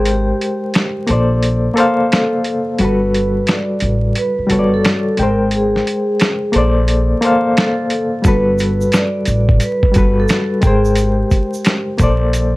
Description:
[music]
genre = lo-fi hip hop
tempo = 88 BPM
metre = 4/4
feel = swing 65% on 16ths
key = unclear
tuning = A4 = 440 Hz
[part]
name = vibraphone with soft mallets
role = melody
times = 0.0-12.0 s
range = G4 to D5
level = -21 LUFS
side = right 1 dB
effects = low-pass filter, analog delay
[part]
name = barky reed electric piano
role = accompaniment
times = 0.0-12.6 s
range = G3 to G5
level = -16 LUFS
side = left 1 dB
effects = overdrive, fast tremolo, low-pass filter
[part]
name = upright bass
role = bass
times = 0.0-12.6 s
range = G1 to Bb1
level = -17 LUFS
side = equal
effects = none
[part]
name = dusty soul sampler-style drum kit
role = drums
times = 0.1-12.5 s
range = finger snaps, hi-hat, kick drum, snare drum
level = -16 LUFS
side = equal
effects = overdrive
[part]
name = tube shaker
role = percussion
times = 8.2-12.5 s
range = none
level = -36 LUFS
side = right 4 dB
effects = none
[sound]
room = moderate small room reverb, RT60 0.5 s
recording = vinyl crackle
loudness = -13 LUFS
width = side -20 dB against mid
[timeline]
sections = 0.0-12.6 A section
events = break 0.0-8.2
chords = 0.0 Abmaj9; 1.1 Bbmaj9; 2.8 Gmaj9; 5.2 Abmaj9; 6.5 Bbmaj9; 8.2 Gmaj9; 10.6 Abmaj9; 12.0 Bbmaj9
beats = | 0.07 0.75 1.43 2.11 | 2.79 3.48 4.16 4.84 | 5.52 6.20 6.88 7.57 | 8.25 8.93 9.61 10.29 | 10.97 11.66 12.34

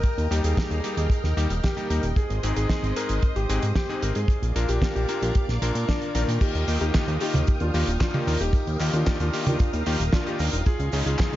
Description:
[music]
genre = italo disco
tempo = 113 BPM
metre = 4/4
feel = straight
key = Eb major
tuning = A4 = 440 Hz
[part]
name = warm baby grand piano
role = melody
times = 0.0-11.4 s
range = D4 to Bb4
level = -31 LUFS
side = equal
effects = digital delay
[part]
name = string machine, full ensemble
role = sustained chords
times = 0.0-11.4 s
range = Ab4 to F6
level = -34 LUFS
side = equal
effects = ensemble chorus
[part]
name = damped 70s drum kit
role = drums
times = 0.0-11.4 s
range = cabasa, crash cymbal, handclaps, hi-hat, snare drum, toms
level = -30 LUFS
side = right 2 dB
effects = studio reverb
[part]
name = kick drum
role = drums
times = 0.0-11.3 s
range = none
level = -23 LUFS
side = equal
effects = studio reverb
[part]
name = fat analog bass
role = bass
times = 0.2-11.4 s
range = Eb1 to Bb2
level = -25 LUFS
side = equal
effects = none
[part]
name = bright electric grand piano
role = stabs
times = 0.3-11.4 s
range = Ab2 to Bb4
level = -31 LUFS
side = left 2 dB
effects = none
[sound]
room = light reverb, small room ambience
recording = dark, warm production, nothing above 7.5 kHz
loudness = -22 LUFS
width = side -14 dB against mid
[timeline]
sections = 0.0-6.4 A section; 6.4-11.4 B section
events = none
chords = 0.0 Eb; 2.2 Ab; 4.3 Bb; 6.4 Ebadd9; 10.7 Dbadd9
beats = | 0.04 0.57 1.11 1.64 | 2.17 2.70 3.23 3.76 | 4.29 4.82 5.35 5.88 | 6.42 6.95 7.48 8.01 | 8.54 9.07 9.60 10.13 | 10.66 11.20

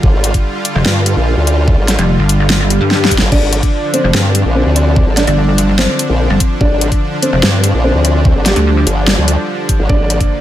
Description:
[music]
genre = heavy wobble dubstep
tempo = 146 BPM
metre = 4/4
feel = half-time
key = G phrygian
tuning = A4 = 440 Hz
[part]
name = supersaw pad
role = sustained chords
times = 0.0-10.4 s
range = D3 to F4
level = -19 LUFS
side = equal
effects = sidechain pumping
[part]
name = formant-sweep wobble bass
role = bass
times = 0.0-10.2 s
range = G1 to G2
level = -13 LUFS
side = equal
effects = chorus, overdrive
[part]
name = electronic kick drum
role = drums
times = 0.0-10.3 s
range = none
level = -13 LUFS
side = equal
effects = overdrive
[part]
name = dubstep drum kit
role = drums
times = 0.2-10.3 s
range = crash cymbal, hi-hat, snare drum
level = -16 LUFS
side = left 1 dB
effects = overdrive
[part]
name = pulsing pluck wobble bass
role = bass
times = 0.8-8.9 s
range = F1 to G2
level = -12 LUFS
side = equal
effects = chorus, overdrive
[part]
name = swell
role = sound effects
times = 2.6-3.3 s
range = none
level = -20 LUFS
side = left 4 dB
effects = none
[part]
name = felt-muted upright piano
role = melody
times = 3.3-10.4 s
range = G3 to D5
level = -18 LUFS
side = left 1 dB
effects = ping-pong delay
[sound]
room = light reverb, digital ambience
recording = none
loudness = -10 LUFS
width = side -12 dB against mid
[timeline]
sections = 0.0-10.4 A section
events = swell 2.6-3.3; drum fill 2.9-3.3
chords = 0.0 G5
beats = | 0.03 0.44 0.85 1.27 | 1.68 2.09 2.50 2.91 | 3.32 3.73 4.14 4.55 | 4.96 5.38 5.79 6.20 | 6.61 7.02 7.43 7.84 | 8.25 8.66 9.07 9.48 | 9.90 10.31

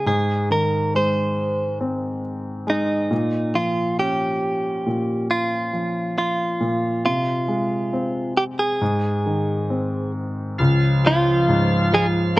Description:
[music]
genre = pop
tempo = 68 BPM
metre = 4/4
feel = straight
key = Ab major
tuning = A4 = 435 Hz
[part]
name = direct-recorded clean electric guitar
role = melody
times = 0.0-12.4 s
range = F3 to C5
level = -22 LUFS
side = right 1 dB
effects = none
[part]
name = warm concert grand piano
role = accompaniment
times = 0.0-12.4 s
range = Db2 to Db4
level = -22 LUFS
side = equal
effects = none
[part]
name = bright tonewheel organ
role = sustained chords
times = 10.6-12.4 s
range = Db3 to F4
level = -25 LUFS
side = left 1 dB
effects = overdrive, slow rotary speaker
[sound]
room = light reverb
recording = recorded outdoors, with no room sound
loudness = -19 LUFS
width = side -18 dB against mid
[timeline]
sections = 0.0-10.6 A section; 10.6-12.4 B section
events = none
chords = 0.1 Ab; 3.1 Bbm; 7.0 Fm/C; 8.8 Ab; 10.6 Db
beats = | 0.06 0.94 1.81 2.68 | 3.55 4.42 5.30 6.17 | 7.05 7.92 8.81 9.70 | 10.59 11.48 12.36

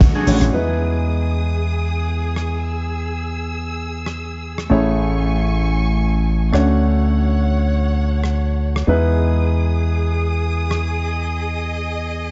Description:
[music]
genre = nu-disco, nu disco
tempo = 115 BPM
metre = 4/4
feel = swing 55% on 16ths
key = E major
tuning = A4 = 438 Hz
[part]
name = warm grand piano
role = accompaniment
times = 0.0-12.3 s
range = G#3 to C#5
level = -25 LUFS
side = equal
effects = sidechain pumping, tape echo
[part]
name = clear studio string section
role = sustained chords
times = 0.0-12.3 s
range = A3 to E6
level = -30 LUFS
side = equal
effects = sidechain pumping
[part]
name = slap bass with an envelope filter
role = bass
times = 0.0-12.3 s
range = A1 to E2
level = -21 LUFS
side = equal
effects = sidechain pumping
[part]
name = damped 70s drum kit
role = drums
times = 0.0-10.8 s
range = cabasa, hi-hat, rim click, snare drum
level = -25 LUFS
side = equal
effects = studio reverb
[part]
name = clean electric guitar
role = riff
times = 0.2-0.5 s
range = D4 to G#4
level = -29 LUFS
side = equal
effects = lush chorus, tape echo
[sound]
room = light reverb, small room ambience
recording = dark, warm production, nothing above 7.7 kHz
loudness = -19 LUFS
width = mono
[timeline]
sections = 0.5-12.3 A section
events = band accent 0.0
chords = 0.0 Dmaj7; 0.5 Emaj7; 4.7 Amaj7; 6.5 Dmaj7; 8.9 Emaj7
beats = 0.01 | 0.53 1.06 1.58 2.10 | 2.62 3.14 3.67 4.19 | 4.71 5.23 5.75 6.27 | 6.79 7.32 7.84 8.36 | 8.88 9.40 9.93 10.45 | 10.97 11.49 12.01

